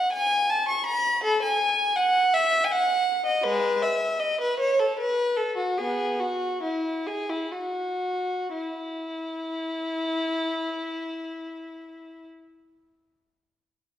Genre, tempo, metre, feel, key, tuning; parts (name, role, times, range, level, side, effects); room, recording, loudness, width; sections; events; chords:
classical, baroque-style suite movement for unaccompanied violin; 58-83 BPM; 3/4; rubato; E major; A4 = 435 Hz
warm violin; solo; 0.0-12.3 s; G#3 to C#6; -24 LUFS; equal
wet recital hall reverb, RT60 1.5 s; heard from further back in the room; -23 LUFS; side -11 dB against mid
0.0-8.5 A section; 8.5-11.5 B section
slowing down 2.3-8.5